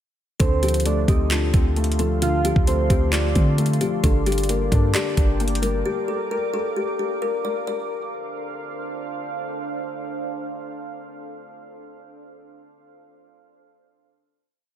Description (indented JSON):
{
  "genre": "hip hop, trap",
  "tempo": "132 BPM",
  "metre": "4/4",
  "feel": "half-time",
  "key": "D minor",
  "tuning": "A4 = 439 Hz",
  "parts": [
    { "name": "kalimba", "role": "melody", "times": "0.4-9.0 s", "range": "F4 to D5", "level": "-26 LUFS", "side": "left 2 dB", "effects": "tape echo" },
    { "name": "soft octave-layered synth lead", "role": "second line", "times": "0.4-3.6 s", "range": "C5 to F5", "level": "-27 LUFS", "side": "right 6 dB", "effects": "chorus, tape echo" },
    { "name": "felt-muted upright piano", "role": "accompaniment", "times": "0.4-6.8 s", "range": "D3 to D5", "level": "-26 LUFS", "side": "left 4 dB", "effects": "none" },
    { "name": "deep dark ambient pad", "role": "sustained chords", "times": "1.5-11.6 s", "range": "D4 to D6", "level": "-32 LUFS", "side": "right 3 dB", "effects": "chorus, built-in reverb" },
    { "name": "clean 808-style bass", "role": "bass", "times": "0.4-5.8 s", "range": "G1 to D3", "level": "-22 LUFS", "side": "equal", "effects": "none" },
    { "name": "trap drum kit", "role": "drums", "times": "0.4-5.7 s", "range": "handclaps, hi-hat, kick drum", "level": "-22 LUFS", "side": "equal", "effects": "none" }
  ],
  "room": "digital ambience",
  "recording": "none",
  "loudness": "-20 LUFS",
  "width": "side -10 dB against mid",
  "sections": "0.4-7.7 hook; 7.7-11.3 final chord",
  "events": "none",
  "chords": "0.4 Dm7; 4.0 Gm; 7.7 Dm7"
}